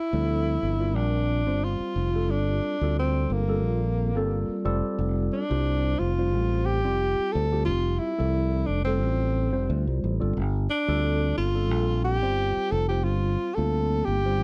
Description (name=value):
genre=electric jazz fusion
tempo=89 BPM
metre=4/4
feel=straight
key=G dorian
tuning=A4 = 440 Hz
part: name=breathy tenor saxophone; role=melody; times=0.0-14.4 s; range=Bb3 to A4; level=-30 LUFS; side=equal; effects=slapback echo
part: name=tine electric piano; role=accompaniment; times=0.1-14.4 s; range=F3 to C5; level=-33 LUFS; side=equal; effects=phaser
part: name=fingered electric bass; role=bass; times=0.1-14.4 s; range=F1 to D2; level=-28 LUFS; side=equal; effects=none
room=light reverb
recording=dry, close 1970s-style studio recording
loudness=-26 LUFS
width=mono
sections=0.0-14.4 A section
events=none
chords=0.0 Gm9; 4.7 Fadd9; 10.4 Gm9